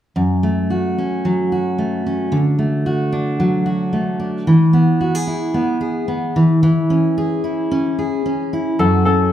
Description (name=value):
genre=pop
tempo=111 BPM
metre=4/4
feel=straight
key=F# minor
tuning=A4 = 436 Hz
part: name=fingerpicked steel-string acoustic guitar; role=accompaniment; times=0.2-9.3 s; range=F#2 to G#4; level=-15 LUFS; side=equal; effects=none
part: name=bright upright piano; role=melody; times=8.8-9.3 s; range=A4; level=-16 LUFS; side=left 5 dB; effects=none
room=wet large studio reverb, RT60 1.2 s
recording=band playing live in one room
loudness=-15 LUFS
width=side -11 dB against mid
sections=0.2-8.8 A section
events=none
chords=0.2 F#m; 2.3 D; 4.5 E; 6.4 C#m/E; 8.8 F#m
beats=| 0.17 0.71 1.25 1.79 | 2.33 2.87 3.41 3.95 | 4.49 5.02 5.56 6.10 | 6.64 7.18 7.71 8.25 | 8.79